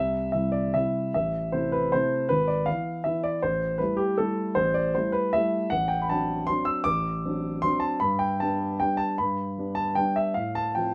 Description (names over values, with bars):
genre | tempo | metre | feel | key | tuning
classical, piano waltz | 155 BPM | 3/4 | rubato | unclear | A4 = 441 Hz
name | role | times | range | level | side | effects
warm grand piano | solo | 0.0-10.9 s | G#1 to E6 | -26 LUFS | equal | none
room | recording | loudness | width
light reverb | none | -26 LUFS | mono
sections
0.0-10.9 A section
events
none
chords
0.0 C; 1.1 Am; 2.3 E/G#; 3.4 Am7; 5.7 D7/A; 8.0 G; 10.4 F/A